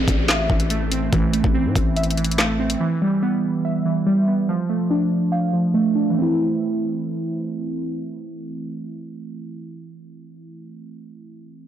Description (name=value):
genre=hip hop, drill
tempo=143 BPM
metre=4/4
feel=half-time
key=A minor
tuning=A4 = 440 Hz
part: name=glassy digital keys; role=accompaniment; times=0.0-11.7 s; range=E3 to F5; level=-21 LUFS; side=right 1 dB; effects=chorus, low-pass filter
part: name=growling 808-style bass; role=bass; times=0.0-2.8 s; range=A1 to A2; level=-23 LUFS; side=left 1 dB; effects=none
part: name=downlifter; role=sound effects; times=0.0-2.8 s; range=none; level=-32 LUFS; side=left 1 dB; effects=none
part: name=drill drum kit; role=drums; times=0.1-2.8 s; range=handclaps, hi-hat, kick drum, snare drum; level=-20 LUFS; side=left 1 dB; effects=overdrive
room=light reverb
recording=blown-out, overdriven recording, overdrive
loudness=-18 LUFS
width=side -10 dB against mid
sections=0.0-6.2 A section; 6.2-9.5 B section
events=filter sweep on synth keys 0.0-6.2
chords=0.0 Am; 2.8 Em; 4.5 Dm; 6.2 Am